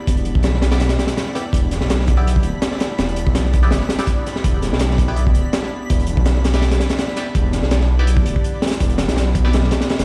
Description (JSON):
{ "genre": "drum and bass, jungle", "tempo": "165 BPM", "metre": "4/4", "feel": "straight", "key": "E minor", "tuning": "A4 = 439 Hz", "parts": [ { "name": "warbly tape-like pad", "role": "sustained chords", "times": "0.0-10.0 s", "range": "B3 to D5", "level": "-31 LUFS", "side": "equal", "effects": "chorus, built-in reverb" }, { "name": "twinkling granular texture", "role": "texture", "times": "0.0-10.0 s", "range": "B5", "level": "-40 LUFS", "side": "equal", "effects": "built-in reverb" }, { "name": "detuned saw bass", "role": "bass", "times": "0.1-10.0 s", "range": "D1 to B1", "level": "-21 LUFS", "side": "equal", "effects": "none" }, { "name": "crunchy breakbeat drum kit", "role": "drums", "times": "0.1-10.0 s", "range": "hi-hat, kick drum, snare drum", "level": "-20 LUFS", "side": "equal", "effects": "none" }, { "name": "band-passed chord stab", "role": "stabs", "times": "0.7-9.5 s", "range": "B3 to D5", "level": "-34 LUFS", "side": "equal", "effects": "phaser, dub echo" } ], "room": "small room reverb", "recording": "played on a big sound system in a bare room, stone room reverb, vinyl crackle", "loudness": "-18 LUFS", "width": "mono", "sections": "0.0-10.0 A section", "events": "none", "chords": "0.0 Em7" }